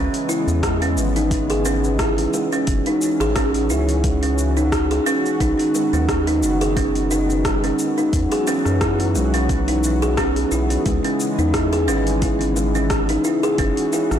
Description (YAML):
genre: organic downtempo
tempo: 88 BPM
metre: 4/4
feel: swing 55% on 16ths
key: C# minor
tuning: A4 = 440 Hz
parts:
  - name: warm analog pad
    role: sustained chords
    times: 0.0-14.2 s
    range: C#3 to F#4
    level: -27 LUFS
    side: left 1 dB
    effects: chorus, tremolo, sidechain pumping
  - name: kalimba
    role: arpeggios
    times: 0.0-14.1 s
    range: G#3 to G#4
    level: -20 LUFS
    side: right 1 dB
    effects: digital delay
  - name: round analog bass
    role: bass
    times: 0.0-14.2 s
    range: F#1 to F#2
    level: -22 LUFS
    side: equal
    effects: sidechain pumping
  - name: deep house drum kit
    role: drums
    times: 0.1-14.2 s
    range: hi-hat, rim click, shaker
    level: -27 LUFS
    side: left 1 dB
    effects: overdrive
  - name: electronic kick drum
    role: drums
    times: 0.6-13.7 s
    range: none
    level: -24 LUFS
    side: equal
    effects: none
room: light reverb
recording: blown-out, overdriven recording, overdrive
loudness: -17 LUFS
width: side -9 dB against mid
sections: 0.0-14.2 A section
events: none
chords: 0.0 C#m7; 2.7 F#m7; 5.4 B; 8.1 Esus2; 10.9 C#m7; 13.6 F#m7